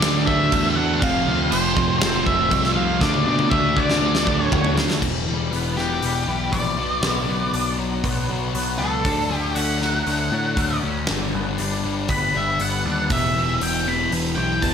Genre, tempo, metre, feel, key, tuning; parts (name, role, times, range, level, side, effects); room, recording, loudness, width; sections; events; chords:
quiet-loud alternative rock; 119 BPM; 4/4; straight; A4 = 442 Hz
octave-fuzz lead guitar; melody; 0.0-14.7 s; G4 to B5; -23 LUFS; equal; distortion, slapback echo
high-gain distorted guitar; riff; 0.0-5.0 s; F2 to D4; -28 LUFS; equal; distortion, slapback echo
thick fuzz guitar; riff; 0.0-14.7 s; E2 to D4; -26 LUFS; left 8 dB; distortion
thick fuzz guitar; riff; 0.0-5.0, 13.1-14.7 s; D3 to B4; -26 LUFS; right 9 dB; distortion
growling picked electric bass; bass; 0.0-14.7 s; E1 to B2; -27 LUFS; right 1 dB; overdrive
big rock drum kit; drums; 0.0-14.7 s; crash cymbal, hi-hat, kick drum, snare drum, toms; -25 LUFS; equal
twangy electric guitar; arpeggios; 5.0-13.1 s; E2 to D4; -30 LUFS; equal; ensemble chorus, slapback echo
moderate lush hall reverb, RT60 1.5 s; big arena sound; -18 LUFS; side -7 dB against mid
0.0-5.0 A section; 5.0-14.7 B section
drum fill 3.0-5.0; half time 5.0-14.7; lead electric guitar solo 5.0-14.7
0.0 D; 1.0 F; 3.0 D; 5.0 Em; 6.8 Bm; 9.1 Dmaj7; 11.1 G; 13.1 Em